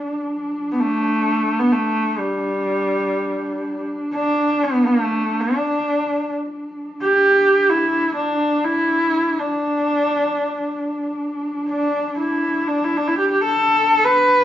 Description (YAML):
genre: mongolian traditional, Mongolian folk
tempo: free time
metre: none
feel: none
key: D zhi mode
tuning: A4 = 440 Hz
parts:
  - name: clear horsehead fiddle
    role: melody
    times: 0.0-14.4 s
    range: G3 to B4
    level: -17 LUFS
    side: equal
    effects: none
  - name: dark horsehead fiddle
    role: drone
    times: 0.0-14.4 s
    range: D4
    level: -26 LUFS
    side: equal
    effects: none
room: wet stone room reverb, RT60 1.0 s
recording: band playing live in one room, nothing above 7.5 kHz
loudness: -17 LUFS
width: side -11 dB against mid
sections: 0.0-14.4 A section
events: none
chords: none